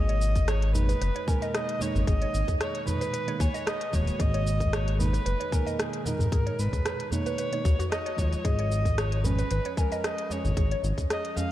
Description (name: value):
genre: organic downtempo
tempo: 113 BPM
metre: 4/4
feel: swing 54% on 16ths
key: G# dorian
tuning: A4 = 440 Hz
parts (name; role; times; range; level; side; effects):
- dark kamancheh; melody; 0.0-11.5 s; G#4 to E#5; -33 LUFS; equal; analog delay
- muted felt-like synth keys; accompaniment; 0.0-11.5 s; A#2 to F#4; -34 LUFS; right 3 dB; chorus, sidechain pumping, diffuse ambient delay
- mallet-like synth pluck; arpeggios; 0.0-11.2 s; F#4 to G#5; -36 LUFS; equal; chorus, phaser, diffuse ambient delay
- smooth synth bass; bass; 0.0-10.9 s; D#1 to D#2; -26 LUFS; left 1 dB; sidechain pumping
- organic electronic drum kit; drums; 0.1-11.5 s; hi-hat, rim click, shaker; -35 LUFS; equal; none
- djembe; percussion; 0.1-11.5 s; none; -35 LUFS; equal; none
- electronic kick drum; drums; 0.4-11.1 s; none; -26 LUFS; equal; none
room: light reverb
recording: none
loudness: -25 LUFS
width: side -14 dB against mid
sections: 0.0-11.5 A section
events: none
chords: 0.0 G#madd9